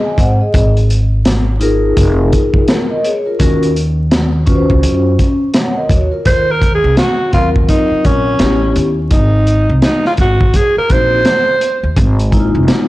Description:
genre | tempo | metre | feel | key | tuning
hip hop, jazz-hop | 84 BPM | 4/4 | swing 62% on 16ths | Eb dorian | A4 = 440 Hz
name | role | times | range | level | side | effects
vibraphone with soft mallets | accompaniment | 0.0-12.9 s | Gb3 to Ab5 | -16 LUFS | left 1 dB | none
upright bass | bass | 0.2-12.7 s | F1 to Gb2 | -14 LUFS | equal | tube saturation
crunchy breakbeat drum kit | drums | 0.2-12.9 s | hi-hat, kick drum, snare drum | -14 LUFS | equal | none
growling alto saxophone | melody | 6.3-12.0 s | Db4 to C5 | -14 LUFS | right 1 dB | none
room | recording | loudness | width
light reverb | blown-out, overdriven recording, vinyl crackle, overdrive | -10 LUFS | side -17 dB against mid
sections
0.0-6.3 A section; 6.3-12.9 B section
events
alto saxophone solo 6.3-12.9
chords
0.0 Ab7; 0.5 Db69 (rootless); 3.4 Ebm9; 6.3 Ebm69; 8.4 A9; 9.1 Ab7; 12.0 Absus2

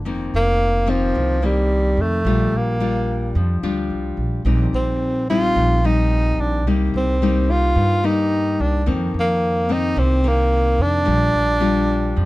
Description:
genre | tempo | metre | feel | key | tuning
bossa nova | 109 BPM | 4/4 | straight | Bb major | A4 = 440 Hz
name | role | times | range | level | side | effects
nylon-string guitar | accompaniment | 0.0-12.3 s | F2 to F4 | -23 LUFS | left 3 dB | none
upright bass | bass | 0.0-12.3 s | F1 to G2 | -20 LUFS | right 1 dB | none
breathy tenor saxophone | melody | 0.4-12.3 s | F3 to F4 | -20 LUFS | right 1 dB | none
room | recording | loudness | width
little or no reverb | dark, warm production | -16 LUFS | side -18 dB against mid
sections
0.0-12.3 A section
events
none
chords
0.1 F7sus4; 2.3 Bb6; 4.5 Eb6/Bb; 6.7 Cm7; 8.9 F7sus4; 11.1 Bb6

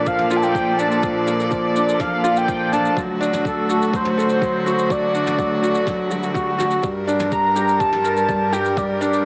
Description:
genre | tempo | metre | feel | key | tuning
piano and strings electronica | 124 BPM | 4/4 | straight | G minor | A4 = 439 Hz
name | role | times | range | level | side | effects
warm velvety synth lead | melody | 0.0-9.2 s | A4 to Bb5 | -24 LUFS | equal | chorus
warm string quartet | sustained chords | 0.0-9.2 s | D3 to D5 | -30 LUFS | equal | sidechain pumping
felt-muted upright piano | riff | 0.0-9.2 s | F3 to Bb4 | -23 LUFS | equal | none
warm symphonic cello section | bass | 0.0-9.2 s | D2 to Bb2 | -28 LUFS | equal | tube saturation, sidechain pumping
electronic kick drum | drums | 0.1-8.9 s | none | -32 LUFS | equal | none
shaker and toms | drums | 0.1-9.2 s | none | -36 LUFS | equal | none
swell | sound effects | 6.2-6.8 s | none | -36 LUFS | equal | none
room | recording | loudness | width
moderate echo chamber reverb, RT60 1.3 s, small room ambience | small speaker sound | -20 LUFS | mono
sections
0.0-9.2 A section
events
none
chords
0.0 Bbmaj7; 3.0 D; 6.8 Gm

